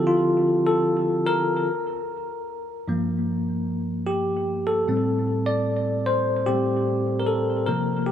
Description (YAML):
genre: R&B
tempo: 75 BPM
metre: 4/4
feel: straight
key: unclear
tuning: A4 = 440 Hz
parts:
  - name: bell-like tine electric piano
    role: solo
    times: 0.0-8.1 s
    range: G2 to D5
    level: -21 LUFS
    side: equal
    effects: fast stereo tremolo, analog delay
room: moderate plate reverb, RT60 3.2 s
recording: echo-heavy mix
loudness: -21 LUFS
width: side -10 dB against mid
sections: 0.0-8.1 A section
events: tine electric piano solo 0.0-8.1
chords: 0.0 Dm7; 1.7 Gm7; 4.9 Am7